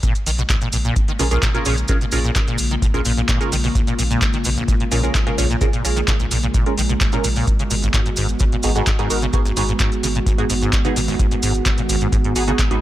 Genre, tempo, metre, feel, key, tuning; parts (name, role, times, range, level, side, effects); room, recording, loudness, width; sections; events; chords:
acid house; 129 BPM; 4/4; straight; Bb phrygian; A4 = 440 Hz
warbly tape-like pad; sustained chords; 0.4-12.8 s; Db3 to Gb4; -25 LUFS; right 1 dB; chorus, built-in reverb, sidechain pumping
acid bass, saw; riff; 0.0-12.8 s; Ab1 to Eb3; -24 LUFS; equal; tube saturation, ensemble chorus, sidechain pumping
booming analog drum machine; drums; 0.0-12.8 s; handclaps, hi-hat; -25 LUFS; left 1 dB
electronic kick drum; drums; 0.0-12.7 s; -20 LUFS; equal
maracas; percussion; 0.0-12.7 s; -29 LUFS; right 3 dB
warm sub bass; bass; 0.3-12.5 s; Ab1 to Bb1; -22 LUFS; equal; sidechain pumping
filtered dub chord stab; stabs; 1.2-12.8 s; Cb4 to Db5; -25 LUFS; right 3 dB; phaser, lush chorus, dub echo
digital ambience; -16 LUFS; side -14 dB against mid
0.0-12.8 A section
0.0 Bbm7; 7.5 Abm7